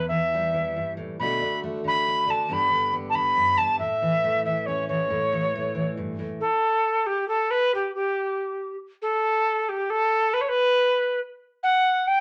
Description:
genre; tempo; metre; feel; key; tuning
folk; 138 BPM; 3/4; straight; unclear; A4 = 441 Hz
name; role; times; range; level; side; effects
mellow alto recorder; melody; 0.0-12.2 s; G4 to B5; -24 LUFS; equal; none
fingerpicked steel-string acoustic guitar; accompaniment; 0.0-6.4 s; E2 to G4; -32 LUFS; equal; none
room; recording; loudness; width
moderate studio reverb, RT60 0.7 s; none; -24 LUFS; mono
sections
0.0-6.4 A section; 6.4-11.6 B section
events
none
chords
0.0 Em; 1.2 Bm7; 2.5 G; 3.8 A; 6.4 N.C.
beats
0.32 0.76 | 1.19 1.63 2.06 | 2.50 2.94 3.37 | 3.81 4.24 4.68 | 5.11 5.54 5.98 | 6.42 6.85 7.28 | 7.72 8.15 8.59 | 9.02 9.46 9.89 | 10.32 10.76 11.19 | 11.62 12.06

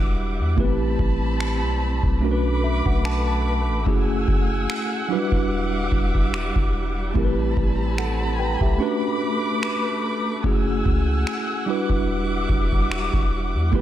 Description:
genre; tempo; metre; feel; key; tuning
contemporary R&B; 73 BPM; 4/4; swing 54% on 16ths; unclear; A4 = 439 Hz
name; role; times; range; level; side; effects
mellow tine electric piano; accompaniment; 0.0-13.8 s; F#3 to A5; -25 LUFS; right 1 dB; overdrive, medium stereo tremolo
warm studio string section; sustained chords; 0.0-13.8 s; G3 to E6; -27 LUFS; equal; sidechain pumping
long sustained 808-style bass; bass; 0.0-13.8 s; E1 to E2; -24 LUFS; equal; none
booming analog drum machine; drums; 0.6-13.8 s; finger snaps, kick drum; -23 LUFS; equal; vintage 12-bit sampler grit
room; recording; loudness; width
light reverb; none; -20 LUFS; side -12 dB against mid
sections
0.0-13.8 A section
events
tine electric piano fill 2.2-3.9; kick muted 8.8-10.4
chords
0.0 Em9; 0.6 Am9; 2.2 Bm9; 3.9 F#m9; 5.1 Em9; 7.2 Am9; 8.8 Bm9; 10.4 F#m9; 11.7 Em9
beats
| 0.58 1.40 2.22 3.04 | 3.87 4.69 5.51 6.33 | 7.15 7.97 8.80 9.62 | 10.44 11.26 12.08 12.91 | 13.73

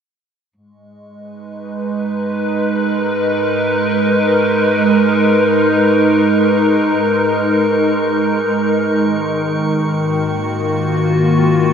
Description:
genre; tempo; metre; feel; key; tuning
ambient; free time; none; none; G# dorian; A4 = 440 Hz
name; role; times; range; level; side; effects
evolving wavetable pad; sustained chords; 1.6-11.7 s; D#3 to B4; -13 LUFS; equal; chorus, built-in reverb
dark chamber cello section; bass; 0.6-11.7 s; G#2; -30 LUFS; equal; none
drifting glass-harmonics texture; texture; 1.6-11.7 s; C#6; -32 LUFS; right 2 dB; chorus, built-in reverb
room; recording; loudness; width
wet huge ambient reverb, RT60 7.5 s; none; -13 LUFS; side -7 dB against mid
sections
0.6-11.7 A section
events
fade-in on cello section 0.6-11.7; fade-in on synth texture 0.6-11.7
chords
0.6 G#m; 9.0 D#m7/G#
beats
free time

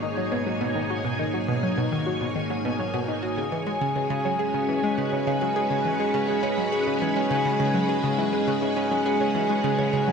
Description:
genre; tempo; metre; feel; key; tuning
ambient, sequencer-driven space music; 103 BPM; 4/4; straight; unclear; A4 = 440 Hz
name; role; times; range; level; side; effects
string machine, full ensemble; sustained chords; 0.0-10.1 s; G#2 to G#5; -26 LUFS; equal; ensemble chorus
analog pluck; riff; 0.0-10.1 s; B2 to G#4; -27 LUFS; equal; chorus, phaser, ping-pong delay
vibraphone with hard mallets; arpeggios; 3.5-10.1 s; D#4 to G#5; -27 LUFS; equal; auto-pan, ping-pong delay
room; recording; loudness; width
wet spring reverb, RT60 2.5 s; echo-heavy mix; -22 LUFS; side -6 dB against mid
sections
0.0-10.1 A section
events
none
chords
0.0 B/G#; 3.4 C#5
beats
0.46 | 1.05 1.63 2.21 2.79 | 3.38 3.96 4.54 5.12 | 5.71 6.29 6.87 7.45 | 8.04 8.62 9.20 9.78

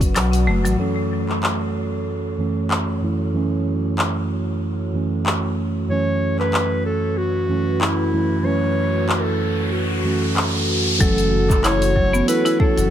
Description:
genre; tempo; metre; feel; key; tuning
organic downtempo; 94 BPM; 4/4; swing 55% on 16ths; F# minor pentatonic; A4 = 439 Hz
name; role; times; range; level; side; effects
warm analog pad; sustained chords; 0.0-12.9 s; F#3 to F#5; -30 LUFS; equal; chorus, sidechain pumping
round analog bass; bass; 0.0-0.8, 11.0-12.9 s; F#1 to B1; -21 LUFS; equal; sidechain pumping
deep house drum kit; drums; 0.0-12.9 s; cabasa, handclaps, hi-hat; -25 LUFS; left 1 dB; none
electronic kick drum; drums; 0.0-0.1, 11.0-12.7 s; none; -19 LUFS; equal; none
bronze singing bowl; texture; 0.0-11.0 s; F#3 to A4; -34 LUFS; right 2 dB; none
buzzing marimba with hard mallets; arpeggios; 0.2-0.8, 11.0-12.9 s; F#3 to E4; -23 LUFS; left 1 dB; ping-pong delay
mellow tine electric piano; accompaniment; 0.8-12.9 s; F#2 to E4; -22 LUFS; right 2 dB; sidechain pumping, ping-pong delay
warm clarinet; melody; 5.9-12.9 s; E4 to C#5; -23 LUFS; left 1 dB; ping-pong delay
riser; sound effects; 8.4-11.0 s; none; -28 LUFS; equal; none
room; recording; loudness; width
light reverb; none; -18 LUFS; side -10 dB against mid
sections
0.8-11.0 A section; 11.0-12.9 B section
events
band accent 0.2-0.5; riser 8.4-11.0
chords
0.0 Bm/F#; 0.8 F#m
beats
0.15 | 0.79 1.43 2.07 2.71 | 3.35 3.98 4.62 5.26 | 5.90 6.54 7.17 7.81 | 8.45 9.09 9.73 10.37 | 11.00 11.64 12.28

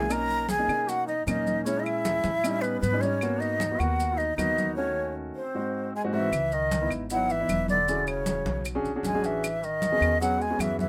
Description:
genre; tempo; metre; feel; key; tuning
Afro-Cuban jazz; 154 BPM; 4/4; straight; G# minor, C# minor from 6.3 s; A4 = 440 Hz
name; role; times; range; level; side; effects
breathy jazz flute; melody; 0.0-10.9 s; B4 to A#5; -30 LUFS; equal; none
warm duduk; second line; 0.0-10.9 s; C#3 to A#4; -37 LUFS; equal; none
warm baby grand piano; accompaniment; 0.0-10.8 s; G#2 to G#4; -34 LUFS; equal; none
upright bass; bass; 0.0-10.9 s; E1 to B2; -36 LUFS; equal; none
claves; percussion; 0.1-10.8 s; none; -39 LUFS; equal; none
congas; percussion; 0.1-10.9 s; none; -36 LUFS; equal; none
maracas; percussion; 0.1-10.9 s; none; -44 LUFS; equal; none
room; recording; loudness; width
light reverb; none; -27 LUFS; mono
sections
0.0-6.3 A section; 6.3-10.9 B section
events
break 4.8-6.3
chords
0.1 Bmaj7; 1.7 A#m7b5; 2.4 A7#11; 3.2 G#m7; 4.8 D#m7b5; 5.6 G#7; 6.3 C#m9; 7.9 E13; 9.4 Amaj13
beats
| 0.10 0.49 0.88 1.27 | 1.66 2.05 2.44 2.83 | 3.22 3.61 4.00 4.39 | 4.78 5.17 5.55 5.94 | 6.33 6.72 7.11 7.50 | 7.88 8.27 8.66 9.05 | 9.44 9.82 10.21 10.60

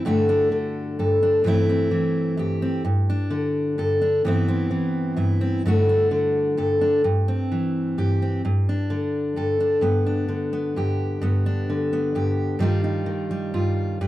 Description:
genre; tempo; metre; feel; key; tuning
folk; 129 BPM; 3/4; straight; G major; A4 = 440 Hz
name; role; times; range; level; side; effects
fingerpicked steel-string acoustic guitar; solo; 0.0-14.1 s; G2 to A4; -20 LUFS; equal; none
room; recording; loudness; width
light reverb; dry, close 1970s-style studio recording; -20 LUFS; side -15 dB against mid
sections
0.0-9.8 A section; 9.8-14.1 B section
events
none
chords
0.1 D/G; 1.5 C6/G; 2.8 D5/G; 4.2 Cmaj7/G; 5.6 D/G; 7.0 C/G; 8.4 D5/G; 9.8 G; 12.6 Ebadd9/G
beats
| 0.06 0.52 0.99 | 1.45 1.92 2.38 | 2.85 3.31 3.78 | 4.25 4.71 5.18 | 5.64 6.11 6.57 | 7.04 7.50 7.97 | 8.44 8.90 9.37 | 9.83 10.30 10.76 | 11.23 11.69 12.16 | 12.62 13.09 13.55 | 14.01

